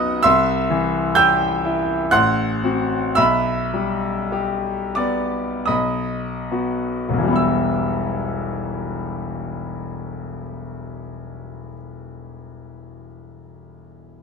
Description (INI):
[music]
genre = classical, romantic nocturne for solo piano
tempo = 33-69 BPM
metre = 3/4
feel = rubato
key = E minor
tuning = A4 = 440 Hz
[part]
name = clear grand piano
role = solo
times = 0.0-14.2 s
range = E1 to G6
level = -19 LUFS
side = equal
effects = none
[sound]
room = light reverb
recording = close, detailed microphones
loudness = -18 LUFS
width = side -5 dB against mid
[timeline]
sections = 0.0-7.4 A section; 7.4-12.2 B section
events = slowing down 0.0-7.4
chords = 0.2 C; 2.1 F#dim/A; 3.2 Em/B; 5.7 B; 7.4 Em